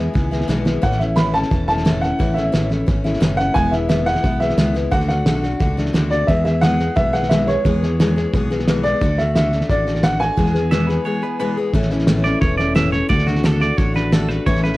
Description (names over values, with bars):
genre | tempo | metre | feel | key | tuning
honky-tonk and classic country | 176 BPM | 4/4 | straight | A major | A4 = 440 Hz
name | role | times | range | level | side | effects
warm upright piano | melody | 0.0-11.5 s | C#5 to B5 | -21 LUFS | right 1 dB | none
picked steel-string acoustic guitar | accompaniment | 0.0-14.8 s | E2 to G#4 | -22 LUFS | left 3 dB | none
fingered electric bass | bass | 0.0-14.8 s | E1 to E2 | -22 LUFS | equal | none
cloth-damped thuddy drum kit | drums | 0.2-14.8 s | hi-hat, kick drum, snare drum | -20 LUFS | equal | none
twangy electric guitar | second line | 10.7-14.8 s | F#4 to E5 | -23 LUFS | right 3 dB | tape echo
room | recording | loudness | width
light reverb | worn, warbling old tape, cassette tape, warbly pitch drift | -15 LUFS | side -18 dB against mid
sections
0.0-11.7 A section; 11.7-14.8 B section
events
drum fill 0.5-0.8; break 11.1-11.7; clean electric guitar solo 11.7-14.8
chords
0.0 E; 0.8 A; 3.6 E; 4.9 D; 6.3 E; 9.0 D; 10.4 E; 11.7 A; 13.1 D